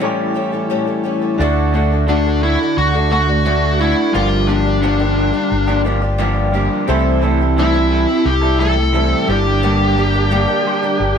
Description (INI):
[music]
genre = folk rock and heartland rock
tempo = 87 BPM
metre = 4/4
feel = straight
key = G dorian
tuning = A4 = 440 Hz
[part]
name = bright baby grand piano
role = accompaniment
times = 0.0-11.2 s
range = D4 to C6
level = -30 LUFS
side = right 3 dB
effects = none
[part]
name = picked twelve-string acoustic guitar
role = accompaniment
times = 0.0-11.2 s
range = G2 to A4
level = -22 LUFS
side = left 6 dB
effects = none
[part]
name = accordion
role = sustained chords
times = 0.0-11.2 s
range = A3 to A4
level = -29 LUFS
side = right 3 dB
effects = light tremolo tuning
[part]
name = electric guitar through a small old amp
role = riff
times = 0.0-11.0 s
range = G2 to A4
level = -20 LUFS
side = right 3 dB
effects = spring reverb
[part]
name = fingered electric bass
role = bass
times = 1.4-11.2 s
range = G1 to D2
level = -17 LUFS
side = equal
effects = none
[part]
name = dark smooth lead guitar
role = melody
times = 2.1-11.2 s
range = D4 to A4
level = -18 LUFS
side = left 2 dB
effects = overdrive, slapback echo
[sound]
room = light reverb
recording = none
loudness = -13 LUFS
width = side -7 dB against mid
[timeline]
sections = 0.0-1.4 A section; 1.4-11.2 B section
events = break 0.0-1.4; grand piano fill 10.3-11.2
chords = 0.0 A7; 1.4 D; 4.1 Gm7; 6.9 C6; 9.3 Gm